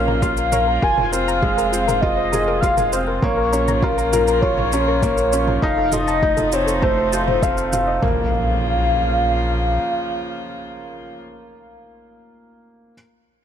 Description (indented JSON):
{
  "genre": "piano and strings electronica",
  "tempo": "100 BPM",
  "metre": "4/4",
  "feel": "straight",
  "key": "Bb minor",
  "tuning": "A4 = 440 Hz",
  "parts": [
    { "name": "warm velvety synth lead", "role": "melody", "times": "0.0-11.2 s", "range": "Bb4 to Ab5", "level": "-21 LUFS", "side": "left 1 dB", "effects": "chorus" },
    { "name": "warm string quartet", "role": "sustained chords", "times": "0.0-11.2 s", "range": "C3 to F4", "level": "-28 LUFS", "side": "equal", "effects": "sidechain pumping" },
    { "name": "felt-muted upright piano", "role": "riff", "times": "0.0-12.9 s", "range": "Ab3 to Bb4", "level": "-23 LUFS", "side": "equal", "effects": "tape echo" },
    { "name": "warm sub bass", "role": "bass", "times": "0.0-9.8 s", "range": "F1 to Bb1", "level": "-24 LUFS", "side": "equal", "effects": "tube saturation, sidechain pumping" },
    { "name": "soft round pluck", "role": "arpeggios", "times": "0.1-8.3 s", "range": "A3 to Bb5", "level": "-28 LUFS", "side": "left 5 dB", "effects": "chorus, sidechain pumping, tape echo" },
    { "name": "electronic toms and shaker", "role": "drums", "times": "0.1-7.8 s", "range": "none", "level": "-28 LUFS", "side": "right 2 dB", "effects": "overdrive" },
    { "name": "electronic kick drum", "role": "drums", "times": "0.2-8.1 s", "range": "none", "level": "-23 LUFS", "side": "equal", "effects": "overdrive" },
    { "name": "impact", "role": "sound effects", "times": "8.0-11.9 s", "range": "none", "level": "-30 LUFS", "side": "right 1 dB", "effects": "none" }
  ],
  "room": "light reverb",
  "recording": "none",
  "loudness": "-16 LUFS",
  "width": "side -9 dB against mid",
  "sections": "0.0-8.0 A section; 8.0-10.4 B section",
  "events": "drop 0.0-8.0",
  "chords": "0.0 Bbm; 0.8 Fm; 3.2 Bbm; 5.6 F7; 8.0 Bbm",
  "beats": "0.23 | 0.83 1.43 2.03 2.63 | 3.23 3.83 4.43 5.03 | 5.63 6.23 6.83 7.43 | 8.03 8.63 9.23 9.83"
}